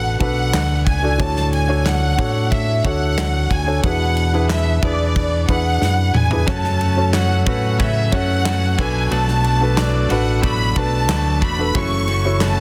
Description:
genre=piano-driven pop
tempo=91 BPM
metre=4/4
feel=straight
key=E mixolydian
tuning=A4 = 440 Hz
part: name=rich symphonic violin section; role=melody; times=0.0-12.6 s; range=D5 to C#6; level=-25 LUFS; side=equal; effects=none
part: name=felt-muted upright piano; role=accompaniment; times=0.0-12.6 s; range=A2 to D5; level=-25 LUFS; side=equal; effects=none
part: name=fingered electric bass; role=bass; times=0.0-12.6 s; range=E1 to A2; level=-22 LUFS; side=equal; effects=none
part: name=modern studio drum kit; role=drums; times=0.2-12.6 s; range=crash cymbal, handclaps, hi-hat, kick drum, ride cymbal, snare drum, toms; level=-25 LUFS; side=equal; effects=soft clipping on kick, soft clipping on snare
part: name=twelve-string electric guitar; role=riff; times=6.5-12.6 s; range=F#2 to F#4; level=-28 LUFS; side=equal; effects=none
room=studio reverb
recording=dense, heavily limited modern master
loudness=-18 LUFS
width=mono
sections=0.0-12.6 A section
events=drum fill 5.8-6.5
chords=0.0 Bm7; 1.2 Dmaj7; 3.8 E7; 6.5 F#m; 8.8 Bm7; 11.7 F#m7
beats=0.54 | 1.20 1.86 2.52 3.18 | 3.84 4.50 5.16 5.82 | 6.47 7.13 7.79 8.45 | 9.11 9.77 10.43 11.09 | 11.75 12.41

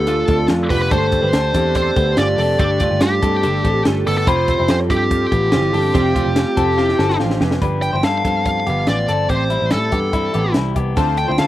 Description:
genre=jangly indie pop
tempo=143 BPM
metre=4/4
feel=straight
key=unclear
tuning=A4 = 440 Hz
part: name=high-gain lead guitar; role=melody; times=0.0-11.5 s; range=G4 to G5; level=-20 LUFS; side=equal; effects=distortion, slapback echo
part: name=vibraphone with soft mallets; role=second line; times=0.0-7.6 s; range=C4 to A4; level=-25 LUFS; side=right 3 dB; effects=slapback echo
part: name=fingerpicked steel-string acoustic guitar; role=accompaniment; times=0.0-11.5 s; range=G2 to G4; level=-28 LUFS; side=right 6 dB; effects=none
part: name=warm analog keys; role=accompaniment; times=0.0-7.6, 11.0-11.5 s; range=C4 to C5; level=-26 LUFS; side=right 1 dB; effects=chorus, phaser
part: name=electric guitar through a small old amp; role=arpeggios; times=0.0-11.5 s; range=G3 to B5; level=-22 LUFS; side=left 5 dB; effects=none
part: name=vintage muted picked electric bass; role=bass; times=0.0-11.5 s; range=F1 to D3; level=-21 LUFS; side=equal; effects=none
part: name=compact cocktail drum kit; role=drums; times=0.1-11.5 s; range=hi-hat, kick drum, snare drum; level=-20 LUFS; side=equal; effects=none
room=little or no reverb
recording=recorded outdoors, with no room sound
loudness=-14 LUFS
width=side -14 dB against mid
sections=0.0-7.6 A section; 7.6-11.5 B section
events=drum fill 6.8-7.6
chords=0.0 Dm; 0.9 Gsus2; 4.3 Fsus2; 7.6 G7; 9.3 Am7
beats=0.08 0.50 | 0.92 1.34 1.76 2.18 | 2.60 3.01 3.43 3.85 | 4.27 4.69 5.11 5.53 | 5.95 6.36 6.78 7.20 | 7.62 8.04 8.46 8.88 | 9.30 9.72 10.14 10.56 | 10.98 11.39

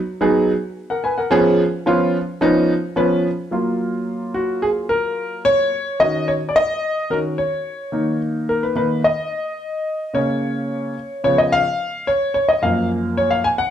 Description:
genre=soul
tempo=109 BPM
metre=4/4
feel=straight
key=F# major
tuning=A4 = 440 Hz
part: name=warm concert grand piano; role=solo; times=0.2-13.7 s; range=F#2 to G#5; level=-17 LUFS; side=equal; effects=none
room=wet large studio reverb, RT60 1.1 s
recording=dark, warm production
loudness=-17 LUFS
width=side -10 dB against mid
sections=0.0-3.5 A section; 3.5-13.7 B section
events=grand piano solo 3.5-13.7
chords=0.0 G#m7; 1.3 C#7; 3.5 F#maj7; 5.7 D#m7; 7.9 D#5; 10.1 A#m/C#; 11.2 C#7; 12.3 F#maj7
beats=0.21 0.76 | 1.31 1.86 2.42 2.97 | 3.52 4.07 4.62 5.18 | 5.73 6.28 6.83 7.39 | 7.94 8.49 9.04 9.59 | 10.14 10.70 11.25 11.80 | 12.35 12.90 13.45

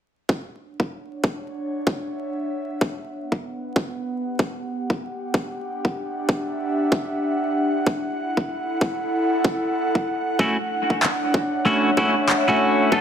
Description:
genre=glitch hop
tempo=95 BPM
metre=4/4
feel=swing 61% on 16ths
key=unclear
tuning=A4 = 441 Hz
part: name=electronic kick drum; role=drums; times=0.3-13.0 s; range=none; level=-21 LUFS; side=equal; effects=high-pass filter on kick, studio reverb
part: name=airy breathy pad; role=texture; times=0.7-13.0 s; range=B3 to F#5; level=-24 LUFS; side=equal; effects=chorus, sidechain pumping
part: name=clean electric guitar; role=stabs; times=10.4-13.0 s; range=A3 to A4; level=-20 LUFS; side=equal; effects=sidechain pumping, dub echo
part: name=electronic handclaps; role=drums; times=11.0-12.4 s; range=none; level=-22 LUFS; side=left 1 dB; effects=studio reverb
room=moderate echo chamber reverb, RT60 2.1 s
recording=echo-heavy mix, vinyl crackle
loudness=-21 LUFS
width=side -8 dB against mid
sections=0.3-13.0 A section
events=fade-in on analog synth pad 0.3-13.0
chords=0.3 Dmaj9; 2.8 Gmaj7; 5.3 Em9; 7.9 F#m7; 10.4 Dmaj9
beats=| 0.29 0.92 1.55 2.19 | 2.82 3.45 4.08 4.71 | 5.34 5.97 6.61 7.24 | 7.87 8.50 9.13 9.76 | 10.40 11.03 11.66 12.29 | 12.92

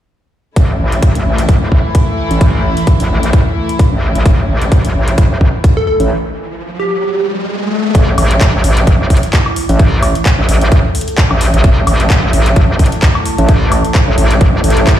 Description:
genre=bass house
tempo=130 BPM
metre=4/4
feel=swing 56% on 16ths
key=unclear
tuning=A4 = 443 Hz
part: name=rich studio string section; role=sustained chords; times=0.6-6.1 s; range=E3 to E4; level=-20 LUFS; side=left 1 dB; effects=sidechain pumping
part: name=metallic wobble bass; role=bass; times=0.6-15.0 s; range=A1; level=-12 LUFS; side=equal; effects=chorus, overdrive, sidechain pumping
part: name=electronic kick drum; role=drums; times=0.6-15.0 s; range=none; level=-9 LUFS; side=equal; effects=none
part: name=garage drum kit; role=drums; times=0.6-15.0 s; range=handclaps, hi-hat, woodblock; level=-19 LUFS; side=left 1 dB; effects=none
part: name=riser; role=sound effects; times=5.2-7.9 s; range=none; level=-20 LUFS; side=left 2 dB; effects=none
part: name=plucky unison lead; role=melody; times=5.8-7.3 s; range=G4 to A4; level=-16 LUFS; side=right 1 dB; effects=phaser, digital delay
part: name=deep dark ambient pad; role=texture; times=9.0-15.0 s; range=E4 to A5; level=-21 LUFS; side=equal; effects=chorus, built-in reverb, sidechain pumping
room=little or no reverb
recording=played on a big sound system in a bare room, large studio reverb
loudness=-9 LUFS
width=side -11 dB against mid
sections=0.6-7.9 A section; 7.9-15.0 B section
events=riser 5.2-7.9; break 6.1-7.9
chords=0.6 A5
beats=| 0.56 1.02 1.49 1.95 | 2.41 2.87 3.33 3.79 | 4.26 4.72 5.18 5.64 | 6.10 6.56 7.03 7.49 | 7.95 8.41 8.87 9.33 | 9.79 10.26 10.72 11.18 | 11.64 12.10 12.56 13.03 | 13.49 13.95 14.41 14.87

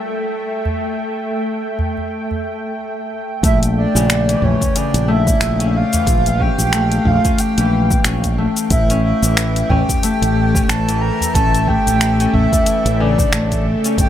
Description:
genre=organic downtempo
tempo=91 BPM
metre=4/4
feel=swing 58% on 16ths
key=A phrygian dominant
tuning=A4 = 440 Hz
part: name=bowed-like drone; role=sustained chords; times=0.0-14.1 s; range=A3 to G5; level=-25 LUFS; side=right 1 dB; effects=built-in reverb, sidechain pumping
part: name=udu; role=percussion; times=0.7-12.6 s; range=none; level=-23 LUFS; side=right 1 dB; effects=none
part: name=breathy flute-like synth lead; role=melody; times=3.4-14.1 s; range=C#5 to Bb5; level=-20 LUFS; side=right 2 dB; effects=lush chorus, tape echo
part: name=Celtic harp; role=arpeggios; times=3.4-14.1 s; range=C#3 to C#4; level=-19 LUFS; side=left 4 dB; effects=none
part: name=fretless electric bass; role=bass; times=3.4-14.1 s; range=G1 to Bb1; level=-18 LUFS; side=equal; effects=none
part: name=afro-pop drum kit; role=drums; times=3.4-14.1 s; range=finger snaps, hi-hat, shaker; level=-21 LUFS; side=left 2 dB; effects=none
part: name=electronic kick drum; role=drums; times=3.4-14.1 s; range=none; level=-19 LUFS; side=equal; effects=none
room=light reverb, digital ambience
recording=none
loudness=-14 LUFS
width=side -10 dB against mid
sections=0.0-3.4 A section; 3.4-14.1 B section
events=none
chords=0.0 A5; 3.4 Bb6; 8.7 A7sus4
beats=0.14 | 0.80 1.46 2.12 2.78 | 3.44 4.10 4.75 5.42 | 6.07 6.73 7.39 8.05 | 8.71 9.37 10.03 10.69 | 11.35 12.01 12.67 13.33 | 13.99

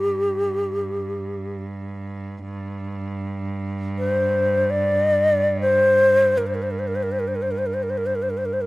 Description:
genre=Arabic maqam ensemble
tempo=free time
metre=none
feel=none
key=G minor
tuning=A4 = 441 Hz
part: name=breathy bright low ney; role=melody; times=0.0-8.7 s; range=G4 to D5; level=-19 LUFS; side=left 1 dB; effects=none
part: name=clear cello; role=drone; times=0.0-8.7 s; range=G2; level=-28 LUFS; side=right 2 dB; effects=none
room=light reverb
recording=recorded outdoors, with no room sound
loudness=-19 LUFS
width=side -20 dB against mid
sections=0.0-8.7 A section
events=none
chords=none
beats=free time

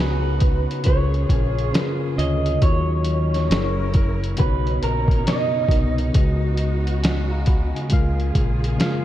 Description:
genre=lo-fi hip hop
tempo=68 BPM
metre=4/4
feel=swing 64% on 16ths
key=unclear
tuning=A4 = 440 Hz
part: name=electric guitar through a small old amp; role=melody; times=0.0-6.0 s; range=A#4 to Eb5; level=-26 LUFS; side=right 2 dB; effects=wide subtle chorus
part: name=mellow tine electric piano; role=accompaniment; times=0.0-9.0 s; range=B2 to Cb6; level=-26 LUFS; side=left 1 dB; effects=medium stereo tremolo
part: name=warm studio string section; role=sustained chords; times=0.0-9.0 s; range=Db3 to Bb4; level=-31 LUFS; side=equal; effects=none
part: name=deep dub fingered electric bass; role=bass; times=0.0-8.8 s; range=Gb1 to Eb2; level=-22 LUFS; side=equal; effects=none
part: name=lo-fi sampler-style drum kit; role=drums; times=0.4-9.0 s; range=hi-hat, kick drum, snare drum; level=-21 LUFS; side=equal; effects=none
room=light reverb, digital ambience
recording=none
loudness=-18 LUFS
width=side -13 dB against mid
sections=0.0-9.0 A section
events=none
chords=0.0 Db9sus4; 0.9 Bbm7; 2.6 Ebm7; 3.5 Gb7; 4.4 Bmaj9; 6.1 Db9sus4; 7.9 Bbm7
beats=0.85 1.74 | 2.62 3.50 4.38 5.26 | 6.15 7.03 7.91 8.79

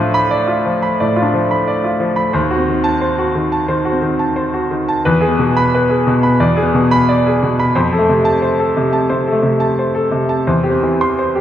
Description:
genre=classical, romantic character piece for solo piano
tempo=89 BPM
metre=4/4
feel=rubato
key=unclear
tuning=A4 = 440 Hz
part: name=clear grand piano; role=solo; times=0.0-11.4 s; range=D#2 to C6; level=-13 LUFS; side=equal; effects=none
room=wet recital hall reverb, RT60 1.5 s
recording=heard from further back in the room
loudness=-13 LUFS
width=side -11 dB against mid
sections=0.0-11.4 A section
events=none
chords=0.0 Bdim/A; 2.3 D#dim7; 5.0 E; 6.4 E7; 7.8 F; 10.5 C/E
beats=0.30 0.99 1.65 | 2.32 3.00 3.67 4.34 | 5.03 5.73 6.39 7.07 | 7.75 8.42 9.09 9.78 | 10.48 11.18

